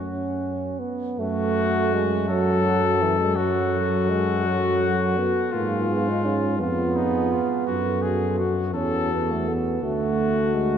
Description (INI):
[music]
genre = classical, hymn-like piece for brass band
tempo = 56 BPM (dotted quarters)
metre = 12/8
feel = rubato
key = F# minor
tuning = A4 = 441 Hz
[part]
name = mellow cornet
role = melody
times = 0.0-10.8 s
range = D#4 to A4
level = -27 LUFS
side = left 6 dB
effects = none
[part]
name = dark French horn section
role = second line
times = 0.0-10.8 s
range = C#4 to A4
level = -30 LUFS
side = right 4 dB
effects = none
[part]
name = mellow euphonium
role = accompaniment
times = 0.0-10.8 s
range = E3 to D#4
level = -26 LUFS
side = right 4 dB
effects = none
[part]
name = warm euphonium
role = accompaniment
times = 0.0-10.8 s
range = C#4 to F#4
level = -32 LUFS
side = left 3 dB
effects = none
[part]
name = mellow tuba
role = bass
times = 0.0-10.8 s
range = D2 to Ab2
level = -26 LUFS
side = left 1 dB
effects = none
[sound]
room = wet cathedral reverb, RT60 5.7 s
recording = none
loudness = -21 LUFS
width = side -8 dB against mid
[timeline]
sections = 0.0-1.2 A section; 1.2-10.8 A section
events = none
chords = 0.0 F#5; 1.2 F#m; 5.5 Fdim/Ab; 7.7 F#m; 9.8 D